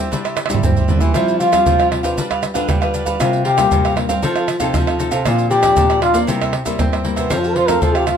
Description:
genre	samba and choro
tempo	117 BPM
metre	4/4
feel	straight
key	F major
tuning	A4 = 440 Hz
part	cavaquinho	accompaniment	0.0-8.2 s	D4 to F5	-24 LUFS	right 7 dB	none
part	nylon-string guitar	accompaniment	0.0-8.2 s	F2 to B4	-24 LUFS	left 6 dB	none
part	nylon-string guitar	bass	0.0-8.1 s	Bb2 to C4	-22 LUFS	equal	none
part	maracas, surdo, pandeiro and tamborim	percussion	0.1-8.2 s	none	-19 LUFS	right 2 dB	none
part	warm trombone	melody	1.1-8.2 s	B3 to C5	-15 LUFS	left 1 dB	none
room	light reverb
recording	minimal, uncompressed stereo recording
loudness	-14 LUFS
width	side -8 dB against mid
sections	0.0-8.2 A section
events	trombone solo 0.0-8.2; drum fill 0.4-1.1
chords	0.0 Cadd9; 1.1 Fsus2; 2.2 G7; 3.2 C7sus4; 4.2 F7; 5.3 Bbadd9; 6.3 C7; 7.3 F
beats	0.12 0.64 | 1.15 1.66 2.18 2.69 | 3.20 3.72 4.23 4.75 | 5.26 5.77 6.29 6.80 | 7.31 7.83

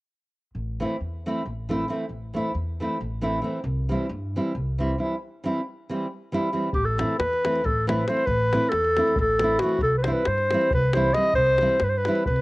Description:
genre	balkan folk, Balkan wedding band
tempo	272 BPM (eighths)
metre	7/8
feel	straight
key	A minor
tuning	A4 = 441 Hz
part	upright bass	bass	0.5-12.4 s	A1 to G2	-28 LUFS	equal	none
part	nylon-string guitar	accompaniment	0.8-12.2 s	E3 to E4	-27 LUFS	right 1 dB	cassette tape, plate reverb
part	warm clarinet	melody	6.7-12.4 s	F#4 to D#5	-22 LUFS	equal	cassette tape, plate reverb
part	davul	percussion	6.7-12.4 s	none	-30 LUFS	left 1 dB	none
room	wet booth ambience, RT60 0.3 s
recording	home recording on cassette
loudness	-22 LUFS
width	side -21 dB against mid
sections	0.5-6.7 A section; 6.7-12.4 B section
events	break 5.2-6.7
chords	0.5 Am; 3.6 C; 6.7 Am; 9.8 C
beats	| 0.53 0.75 0.98 1.20 1.42 1.64 1.87 | 2.09 2.31 2.53 2.75 2.98 3.20 3.42 | 3.64 3.86 4.08 4.31 4.53 4.75 4.97 | 5.19 5.41 5.63 5.85 6.07 6.29 6.51 | 6.73 6.95 7.17 7.39 7.61 7.83 8.05 | 8.27 8.49 8.71 8.93 9.15 9.37 9.59 | 9.81 10.03 10.25 10.47 10.69 10.91 11.13 | 11.35 11.57 11.79 12.01 12.23

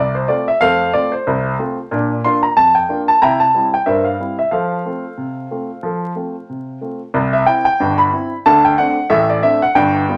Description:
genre	ragtime piano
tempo	92 BPM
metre	2/4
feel	swing 57% on 16ths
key	F major, C major from 7.1 s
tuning	A4 = 441 Hz
part	warm grand piano	solo	0.0-10.2 s	G1 to C6	-16 LUFS	equal	none
room	wet studio reverb, RT60 0.5 s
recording	vinyl crackle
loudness	-16 LUFS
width	mono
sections	0.0-7.1 A section; 7.1-10.2 B section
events	none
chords	0.0 F; 1.9 Bb; 3.2 C7; 4.5 F; 7.1 C; 8.5 D5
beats	| 0.61 1.26 | 1.91 2.56 | 3.21 3.86 | 4.52 5.18 | 5.83 6.49 | 7.15 7.80 | 8.45 9.10 | 9.76

